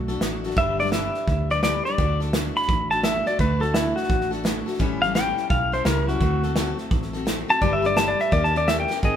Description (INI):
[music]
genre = honky-tonk and classic country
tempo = 170 BPM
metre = 4/4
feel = swing 63% on 8ths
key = unclear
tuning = A4 = 442 Hz
[part]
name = picked steel-string acoustic guitar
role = accompaniment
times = 0.0-9.2 s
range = G2 to B4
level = -28 LUFS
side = left 3 dB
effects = none
[part]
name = vintage muted fingered electric bass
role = bass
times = 0.0-9.2 s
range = G1 to Eb2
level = -28 LUFS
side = equal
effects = none
[part]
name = natural country drum kit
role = drums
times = 0.1-9.2 s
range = hi-hat, kick drum, snare drum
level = -26 LUFS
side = right 1 dB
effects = none
[part]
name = pedal steel guitar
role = melody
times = 0.6-9.2 s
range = E4 to B5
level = -22 LUFS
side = left 1 dB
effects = none
[sound]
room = moderate stone room reverb, RT60 1.5 s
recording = band playing live in one room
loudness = -20 LUFS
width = side -9 dB against mid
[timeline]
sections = 0.0-9.0 A section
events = pedal steel guitar solo 0.0-9.0; drum fill 8.9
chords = 0.0 D; 0.6 G; 2.0 D; 4.8 A7; 6.2 D7; 7.6 G; 8.3 Eb7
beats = 0.22 | 0.57 0.93 1.28 1.63 | 1.98 2.33 2.69 3.04 | 3.39 3.75 4.10 4.45 | 4.80 5.15 5.51 5.86 | 6.21 6.56 6.92 7.27 | 7.62 7.97 8.33 8.68 | 9.03